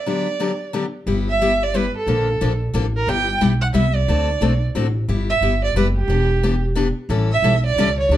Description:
acoustic string swing (jazz manouche); 179 BPM; 3/4; swing 61% on 8ths; G major; A4 = 440 Hz
warm violin; melody; 0.0-8.2 s; G4 to G5; -21 LUFS; right 4 dB
picked steel-string acoustic guitar; accompaniment; 0.1-8.2 s; D3 to A4; -22 LUFS; left 4 dB
upright bass; bass; 1.1-8.2 s; E1 to D2; -20 LUFS; equal
moderate studio reverb, RT60 0.8 s; dark, warm production; -17 LUFS; side -12 dB against mid
0.0-1.1 A section; 1.1-8.2 B section
break 0.1-1.1
0.1 Gmaj7; 1.1 G6; 2.1 Bbmaj7; 3.1 G6; 4.1 D7; 5.1 G6; 6.1 Em7; 7.1 A7
| 0.06 0.39 0.73 | 1.06 1.40 1.73 | 2.07 2.40 2.74 | 3.07 3.41 3.74 | 4.08 4.41 4.75 | 5.08 5.42 5.75 | 6.08 6.42 6.75 | 7.09 7.42 7.76 | 8.10

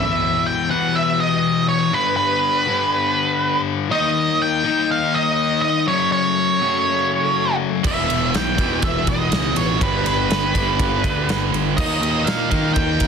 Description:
quiet-loud alternative rock; 122 BPM; 4/4; straight; A4 = 440 Hz
octave-fuzz lead guitar; melody; 0.0-13.1 s; B4 to G5; -20 LUFS; right 3 dB; distortion
soft string machine; sustained chords; 0.0-13.1 s; F#3 to B4; -33 LUFS; right 2 dB; phaser, ensemble chorus
distorted electric guitar; riff; 0.0-13.1 s; E2 to D#4; -22 LUFS; left 10 dB; distortion
heavy high-gain guitar; riff; 7.8-13.1 s; E2 to D#4; -25 LUFS; right 15 dB; distortion
fuzz picked electric bass; bass; 7.8-13.1 s; E1 to D#3; -24 LUFS; equal; overdrive
big rock drum kit; drums; 7.8-13.1 s; crash cymbal, kick drum, ride cymbal, snare drum; -23 LUFS; right 1 dB
light reverb, studio ambience; dense, heavily limited modern master; -16 LUFS; side -6 dB against mid
0.0-13.1 A section
0.0 Em; 1.9 G; 3.9 D#; 5.9 F#m; 7.8 Em; 9.8 G; 11.8 D#
0.45 0.94 1.44 | 1.93 2.42 2.91 3.40 | 3.90 4.39 4.88 5.37 | 5.87 6.36 6.85 7.34 | 7.84 8.33 8.82 9.32 | 9.81 10.30 10.79 11.29 | 11.78 12.27 12.76

